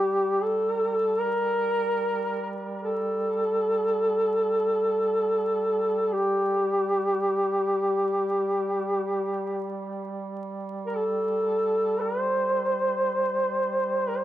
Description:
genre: caucasian folk, Caucasian lament.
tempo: free time.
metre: none.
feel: none.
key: G minor.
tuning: A4 = 440 Hz.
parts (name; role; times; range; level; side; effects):
dark duduk; melody; 0.0-14.2 s; G4 to C5; -24 LUFS; equal; plate reverb, analog delay.
mellow duduk; drone; 0.0-14.2 s; G3; -34 LUFS; right 4 dB; stereo widening.
room: moderate small room reverb, RT60 0.5 s.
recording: vinyl crackle.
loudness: -23 LUFS.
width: side -13 dB against mid.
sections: 0.0-14.2 A section.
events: none.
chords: none.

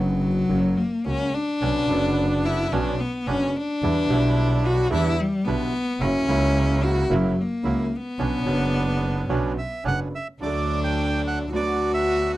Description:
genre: tango.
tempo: 109 BPM.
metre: 4/4.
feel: rubato.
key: B minor.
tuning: A4 = 440 Hz.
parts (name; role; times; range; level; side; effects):
clear cello; second line; 0.0-12.4 s; F#3 to F#4; -24 LUFS; left 2 dB; none.
clear concert grand piano; accompaniment; 0.0-12.4 s; F#1 to A4; -27 LUFS; right 1 dB; none.
rich double bass; bass; 0.0-12.4 s; F#1 to E2; -26 LUFS; right 1 dB; none.
bandoneon; stabs; 1.6-12.4 s; F#3 to E4; -32 LUFS; right 4 dB; none.
bandoneon; melody; 9.6-12.3 s; D5 to G5; -27 LUFS; right 4 dB; none.
room: little or no reverb.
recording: dry, close 1970s-style studio recording.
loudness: -20 LUFS.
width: side -16 dB against mid.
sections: 0.0-10.4 A section; 10.4-12.4 B section.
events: cello solo 0.0-10.4.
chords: 0.5 F#; 1.6 Bmadd9; 3.8 Em7; 6.0 F#7; 8.2 Bmadd9; 10.4 D; 11.5 Bm/D.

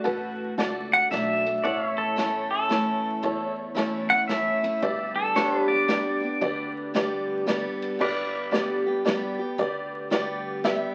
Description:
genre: honky-tonk and classic country.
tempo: 113 BPM.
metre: 3/4.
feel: swing 65% on 8ths.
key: unclear.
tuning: A4 = 439 Hz.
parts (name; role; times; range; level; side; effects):
pedal steel guitar; melody; 0.0-6.7 s; F#4 to F#5; -27 LUFS; equal; none.
honky-tonk upright piano; accompaniment; 0.0-10.9 s; E4 to E5; -32 LUFS; equal; none.
picked steel-string acoustic guitar; accompaniment; 0.0-10.9 s; E2 to G4; -32 LUFS; equal; none.
pedal steel guitar; sustained chords; 0.0-10.9 s; D4 to F#5; -35 LUFS; equal; none.
upright bass; bass; 0.1-10.8 s; G1 to E2; -45 LUFS; equal; none.
unplugged drum kit; drums; 0.1-10.8 s; crash cymbal, hi-hat, kick drum, ride cymbal, snare drum; -35 LUFS; equal; none.
room: wet small room reverb, RT60 0.5 s.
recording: very old 78 rpm record, vinyl crackle.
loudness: -26 LUFS.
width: mono.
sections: 0.0-8.0 A section; 8.0-10.9 B section.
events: pedal steel guitar solo 0.0-8.0.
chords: 0.0 D; 1.6 A; 4.8 G.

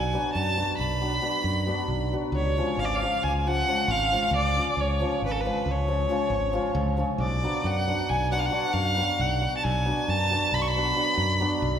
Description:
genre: balkan folk, Balkan wedding band.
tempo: 271 BPM (eighths).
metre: 11/8.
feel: straight.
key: unclear.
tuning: A4 = 445 Hz.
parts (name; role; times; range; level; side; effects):
rich violin; melody; 0.0-11.8 s; A4 to C#6; -26 LUFS; equal; none.
hammered dulcimer; accompaniment; 0.0-11.8 s; E#3 to F#4; -29 LUFS; left 1 dB; none.
modern bright fingered electric bass; bass; 0.0-11.8 s; G#1 to F#2; -28 LUFS; equal; none.
room: wet scoring stage reverb, RT60 2.1 s.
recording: recorded in a church or concert hall.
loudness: -23 LUFS.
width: side -8 dB against mid.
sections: 0.0-2.3 A section; 2.3-11.8 A section.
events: none.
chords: 0.0 Bm; 2.3 C#; 7.2 Bm.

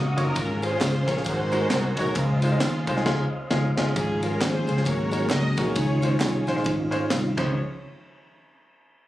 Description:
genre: uptempo gospel.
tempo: 133 BPM.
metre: 4/4.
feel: swing 60% on 8ths.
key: Db major.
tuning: A4 = 440 Hz.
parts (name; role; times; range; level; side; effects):
warm studio string section; melody; 0.0-7.6 s; Ab3 to Eb5; -30 LUFS; equal; none.
mellow tonewheel organ; sustained chords; 0.0-7.5 s; Eb3 to Eb6; -30 LUFS; right 2 dB; fast rotary speaker, chorus vibrato.
fingered electric bass; bass; 0.0-7.5 s; Gb1 to Eb2; -26 LUFS; equal; none.
clear grand piano; accompaniment; 0.2-7.5 s; Db2 to F5; -28 LUFS; left 2 dB; none.
tight funk drum kit; drums; 0.2-7.5 s; crash cymbal, kick drum, ride cymbal, snare drum; -30 LUFS; equal; none.
tambourine and handclaps; percussion; 0.2-7.6 s; none; -38 LUFS; right 1 dB; none.
room: small room ambience.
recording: recorded on a phone in the room, club reverb, compression.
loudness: -22 LUFS.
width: side -15 dB against mid.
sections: 0.0-4.0 A section; 4.0-7.6 B section; 7.6-9.1 C section.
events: band accent 3.1-4.0; grand piano fill 6.7-7.6.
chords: 0.4 Db/Ab; 1.3 Ab9sus4; 2.2 Dbmaj9; 4.0 Db/Ab; 4.9 Ab9sus4; 5.8 Dbmaj9; 7.6 N.C..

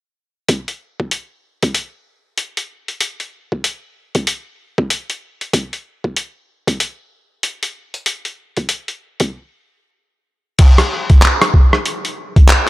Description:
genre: glitch hop.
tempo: 95 BPM.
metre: 4/4.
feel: swing 61% on 16ths.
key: none.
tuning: none.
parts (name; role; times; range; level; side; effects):
boom bap sampler-style drum kit; drums; 0.5-12.7 s; crash cymbal, handclaps, hi-hat, rim click; -17 LUFS; left 1 dB; none.
electronic kick drum; drums; 0.5-12.5 s; none; -11 LUFS; equal; high-pass filter on kick.
room: light reverb.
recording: none.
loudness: -15 LUFS.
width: side -18 dB against mid.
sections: 0.5-10.6 A section; 10.6-12.7 B section.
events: stop 9.3-10.6.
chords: none.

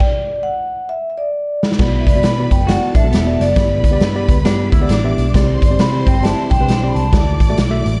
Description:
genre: uptempo 1960s-style soul.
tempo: 135 BPM.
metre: 4/4.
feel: swing 62% on 8ths.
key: unclear.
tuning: A4 = 440 Hz.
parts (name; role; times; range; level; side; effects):
vibraphone with soft mallets; melody; 0.0-7.5 s; D5 to B5; -23 LUFS; equal; none.
raw garage drum kit; drums; 0.0-7.9 s; crash cymbal, hi-hat, kick drum, snare drum; -18 LUFS; equal; none.
bright studio string section; second line; 1.8-8.0 s; A4 to D6; -31 LUFS; equal; none.
mellow tine electric piano; accompaniment; 1.8-7.9 s; A3 to E5; -24 LUFS; equal; none.
vintage muted picked electric bass; bass; 1.8-8.0 s; E1 to C3; -21 LUFS; equal; none.
electric guitar through a small old amp; riff; 2.7-7.1 s; B3 to F#4; -29 LUFS; equal; vibrato effect.
room: studio reverb.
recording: dark, warm production, nothing above 10.6 kHz.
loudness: -15 LUFS.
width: mono.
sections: 0.0-1.8 A section; 1.8-8.0 B section.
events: stop 0.0-1.8; drum fill 0.9-1.8.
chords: 0.0 N.C.; 1.8 Bm; 3.6 G; 5.4 Csus2; 7.1 D.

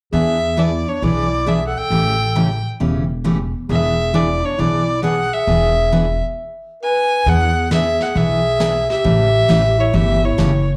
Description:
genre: country, western swing.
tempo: 135 BPM.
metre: 4/4.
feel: swing 67% on 8ths.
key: E mixolydian.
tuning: A4 = 441 Hz.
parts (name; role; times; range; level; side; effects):
warm fiddle; melody; 0.1-10.7 s; C#5 to G#5; -21 LUFS; equal; slapback echo.
dark clarinet; second line; 0.1-10.7 s; D4 to B4; -26 LUFS; equal; none.
picked steel-string acoustic guitar; accompaniment; 0.1-10.5 s; C#3 to G#4; -22 LUFS; equal; none.
upright bass; bass; 0.1-10.8 s; E1 to E2; -22 LUFS; equal; none.
vintage brush drum kit; drums; 7.3-10.8 s; brushed snare drum, hi-hat, kick drum, snare drum; -30 LUFS; equal; none.
room: studio ambience.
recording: live gig heard through the venue's PA, club reverb.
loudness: -17 LUFS.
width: mono.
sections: 0.1-7.3 A section; 7.3-10.8 B section.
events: stop 6.4-7.3.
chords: 0.1 E7; 1.9 A7; 3.7 E7; 9.0 A7.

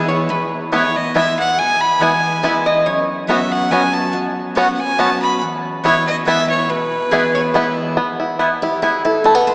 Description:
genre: bluegrass.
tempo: 141 BPM.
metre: 3/4.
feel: swing 53% on 8ths.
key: E major.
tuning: A4 = 437 Hz.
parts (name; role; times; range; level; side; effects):
rich fiddle; melody; 0.0-7.8 s; B4 to B5; -22 LUFS; equal; none.
lap resonator guitar; second line; 0.0-3.2, 7.1-7.9 s; G#4 to D#5; -25 LUFS; equal; none.
picked steel-string acoustic guitar; accompaniment; 0.0-9.5 s; E2 to C5; -24 LUFS; equal; none.
bluegrass banjo; arpeggios; 0.7-9.5 s; A3 to F#4; -22 LUFS; equal; none.
mandolin; stabs; 0.7-8.9 s; B3 to G#5; -24 LUFS; equal; none.
room: wet cathedral reverb, RT60 4.3 s.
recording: recorded in a church or concert hall, small speaker sound.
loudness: -17 LUFS.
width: mono.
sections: 0.0-8.0 A section; 8.0-9.5 B section.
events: steel-string acoustic guitar solo 8.0-9.5.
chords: 0.0 E; 2.9 Bsus2/F#; 5.4 E.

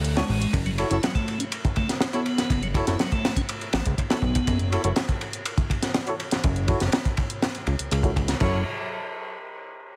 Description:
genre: breakbeat, breaks.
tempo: 122 BPM.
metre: 4/4.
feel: straight.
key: F# minor.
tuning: A4 = 441 Hz.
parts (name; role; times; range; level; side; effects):
fat analog bass; bass; 0.0-8.6 s; F#1 to D2; -28 LUFS; equal; tube saturation.
electronic hi-hat; drums; 0.0-8.4 s; none; -37 LUFS; equal; none.
tonewheel organ; riff; 0.2-4.6, 8.4-8.6 s; F#3 to E4; -32 LUFS; equal; slow rotary speaker, overdrive, digital delay.
warm horn section; stabs; 0.2-8.6 s; D4 to C#5; -34 LUFS; equal; low-pass filter, digital delay.
crunchy breakbeat drum kit; drums; 0.2-8.5 s; crash cymbal, hi-hat, kick drum, ride cymbal, snare drum; -28 LUFS; equal; none.
room: light reverb.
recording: heavily compressed radio sound, multiband compression.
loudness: -25 LUFS.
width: mono.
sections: 0.5-8.4 A section; 8.4-10.0 B section.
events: break 0.0-0.5; filter sweep on horn section 0.5-8.4.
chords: 0.0 Dmaj9; 0.5 F#m7; 8.4 N.C..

